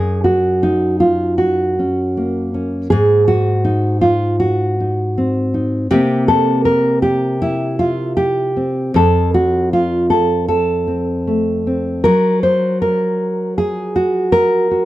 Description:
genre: folk, solo fingerstyle acoustic guitar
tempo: 79 BPM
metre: 4/4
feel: rubato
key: unclear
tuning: A4 = 440 Hz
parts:
  - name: nylon-string guitar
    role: solo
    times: 0.0-14.9 s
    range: F2 to C5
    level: -14 LUFS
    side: equal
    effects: none
room: little or no reverb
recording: dry, close 1970s-style studio recording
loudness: -14 LUFS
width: side -15 dB against mid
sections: 0.0-14.9 A section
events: none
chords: 0.0 Gb; 2.9 Ab; 5.9 C7; 8.9 F; 12.0 N.C.

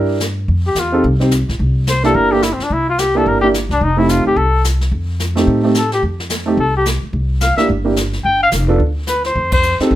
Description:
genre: jazz, small-group swing and bop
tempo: 216 BPM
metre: 4/4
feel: swing 60% on 8ths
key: C mixolydian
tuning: A4 = 439 Hz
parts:
  - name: warm grand piano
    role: accompaniment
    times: 0.0-9.9 s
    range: A3 to C5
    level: -15 LUFS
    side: right 2 dB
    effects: none
  - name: upright bass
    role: bass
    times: 0.0-10.0 s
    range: F1 to A2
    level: -18 LUFS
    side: equal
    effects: none
  - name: jazz brush drum kit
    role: drums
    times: 0.2-10.0 s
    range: brushed snare drum, hi-hat, kick drum, ride cymbal, snare drum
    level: -22 LUFS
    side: equal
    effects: none
  - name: mellow trumpet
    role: melody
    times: 0.7-9.8 s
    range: C4 to G5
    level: -16 LUFS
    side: left 2 dB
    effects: none
room: light reverb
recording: none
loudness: -13 LUFS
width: side -13 dB against mid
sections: 0.0-10.0 A section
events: band accent 9.5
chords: 0.5 F7(no3); 1.6 C7; 3.8 F7; 7.1 C7; 8.2 G7(no3); 9.4 F7

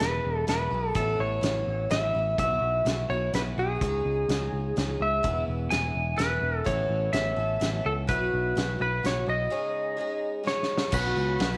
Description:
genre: folk rock and heartland rock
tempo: 126 BPM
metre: 3/4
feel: straight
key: unclear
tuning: A4 = 435 Hz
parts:
  - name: lightly driven lead guitar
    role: melody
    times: 0.0-11.6 s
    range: G#4 to G#5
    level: -30 LUFS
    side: equal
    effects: none
  - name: picked twelve-string acoustic guitar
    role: accompaniment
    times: 0.0-11.6 s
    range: E2 to A4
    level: -36 LUFS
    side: equal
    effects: none
  - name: picked electric bass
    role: bass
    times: 0.0-11.6 s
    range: E1 to C#2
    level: -33 LUFS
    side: equal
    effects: none
  - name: loose indie drum kit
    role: drums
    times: 0.0-11.5 s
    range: crash cymbal, hi-hat, kick drum, ride cymbal, snare drum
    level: -34 LUFS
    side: equal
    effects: none
  - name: bright upright piano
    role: accompaniment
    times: 10.9-11.6 s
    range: none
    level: barely audible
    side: none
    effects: none
  - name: bright tonewheel organ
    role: sustained chords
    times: 10.9-11.6 s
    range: B3 to F#4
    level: -44 LUFS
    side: equal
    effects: none
  - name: tambourine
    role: percussion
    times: 10.9-11.6 s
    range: none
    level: -50 LUFS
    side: equal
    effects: none
room: moderate echo chamber reverb, RT60 1.3 s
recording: none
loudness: -27 LUFS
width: mono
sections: 0.0-10.9 A section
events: drum fill 10.5-10.9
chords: 0.0 E; 1.0 Aadd9; 2.4 Bsus4; 3.8 C#sus2; 5.2 E; 6.7 Aadd9; 8.1 Bsus4; 9.5 C#sus2; 10.9 Bsus2

